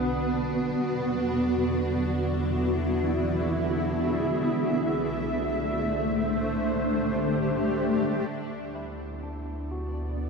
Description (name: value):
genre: ambient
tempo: 64 BPM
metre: 4/4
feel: straight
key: D mixolydian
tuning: A4 = 440 Hz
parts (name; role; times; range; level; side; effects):
- granular cloud pad; sustained chords; 0.0-10.3 s; A3 to D#6; -26 LUFS; equal; built-in reverb, shimmer reverb
- barky tine electric piano; arpeggios; 0.0-1.0, 8.8-10.3 s; D4 to F#5; -42 LUFS; left 2 dB; overdrive, phaser, tape echo, shimmer reverb
- warm sub bass; bass; 0.0-10.3 s; B1 to E2; -35 LUFS; equal; none
- bowed-like drone; drone; 0.0-8.4 s; D3 to D4; -34 LUFS; equal; built-in reverb, phaser
room: wet spring reverb, RT60 2.8 s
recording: echo-heavy mix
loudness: -25 LUFS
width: side -4 dB against mid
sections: 0.0-8.3 A section; 8.3-10.3 B section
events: fade-out on sub bass 0.0-8.3; filter sweep on ambient pad 0.0-8.3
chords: 0.0 B; 0.8 Eadd9; 4.5 C6; 8.3 D